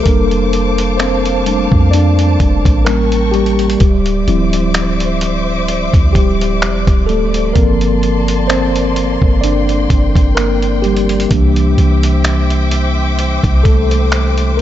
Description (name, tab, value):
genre	contemporary R&B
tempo	64 BPM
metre	4/4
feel	swing 54% on 16ths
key	G dorian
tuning	A4 = 440 Hz
part	mellow tine electric piano	accompaniment	0.0-14.6 s	E3 to D5	-15 LUFS	equal	medium stereo tremolo
part	warm studio string section	sustained chords	0.0-14.6 s	Bb3 to D6	-22 LUFS	equal	none
part	clean 808-style bass	bass	0.1-14.6 s	D1 to F2	-15 LUFS	equal	none
part	dusty soul sampler-style drum kit	drums	0.1-14.6 s	finger snaps, hi-hat, kick drum	-15 LUFS	equal	none
room	digital ambience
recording	nothing above 7.8 kHz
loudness	-11 LUFS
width	side -12 dB against mid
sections	0.0-14.6 A section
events	tine electric piano solo 0.0-14.6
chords	0.1 F6; 2.9 A7b9; 3.8 Dm9; 7.6 Gm11; 11.3 C9